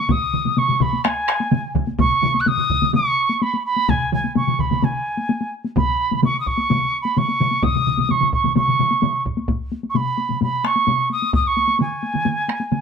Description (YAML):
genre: japanese traditional, taiko drum ensemble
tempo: 128 BPM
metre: 4/4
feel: straight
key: unclear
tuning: A4 = 440 Hz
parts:
  - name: mellow piccolo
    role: melody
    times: 0.0-12.8 s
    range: G#5 to F#6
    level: -20 LUFS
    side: right 2 dB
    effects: none
  - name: solo taiko drums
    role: percussion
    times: 0.1-12.8 s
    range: none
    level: -24 LUFS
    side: left 3 dB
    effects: none
  - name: taiko ensemble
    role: percussion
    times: 0.1-11.0 s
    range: none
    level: -24 LUFS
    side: left 4 dB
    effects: none
  - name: taiko ensemble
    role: percussion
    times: 0.1-12.8 s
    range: none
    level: -25 LUFS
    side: right 5 dB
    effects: none
  - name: taiko ensemble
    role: percussion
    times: 0.1-11.4 s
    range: none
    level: -24 LUFS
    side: equal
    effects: none
room: moderate spring reverb, RT60 1.2 s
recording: none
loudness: -17 LUFS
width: side -6 dB against mid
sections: 0.0-9.5 A section; 9.5-12.8 B section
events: speeding up 0.0-12.8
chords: none